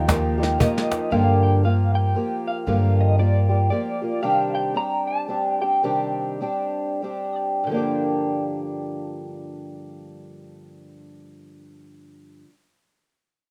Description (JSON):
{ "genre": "acoustic folk duo or small band", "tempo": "89-116 BPM", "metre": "3/4", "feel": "swing 60% on 8ths", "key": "G minor", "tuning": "A4 = 439 Hz", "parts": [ { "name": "electric guitar through a small old amp", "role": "melody", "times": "0.0-12.4 s", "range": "D5 to Bb5", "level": "-32 LUFS", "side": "equal", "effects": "tremolo" }, { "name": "fingerpicked twelve-string acoustic guitar", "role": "accompaniment", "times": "0.0-12.6 s", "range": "G2 to G4", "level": "-26 LUFS", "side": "equal", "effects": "none" }, { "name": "bright upright piano", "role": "arpeggios", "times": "0.0-1.2 s", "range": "F3 to G4", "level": "-33 LUFS", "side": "equal", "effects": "none" }, { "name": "upright bass", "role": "bass", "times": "0.0-3.7 s", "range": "Eb2 to G2", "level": "-22 LUFS", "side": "equal", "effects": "none" }, { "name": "snare drum", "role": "drums", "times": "0.1-0.9 s", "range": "none", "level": "-31 LUFS", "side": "equal", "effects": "none" }, { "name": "cajon", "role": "percussion", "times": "0.1-1.0 s", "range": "none", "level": "-25 LUFS", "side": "equal", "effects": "none" } ], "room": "moderate small room reverb, RT60 0.5 s", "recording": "rough home demo mix", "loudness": "-22 LUFS", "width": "mono", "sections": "0.0-1.1 A section; 1.1-7.7 B section; 7.7-11.7 C section", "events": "drum fill 0.1-1.1; slowing down 4.2-7.7", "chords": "0.0 Ebadd9; 1.1 Gm7; 4.2 Cmadd9; 7.7 Gm7" }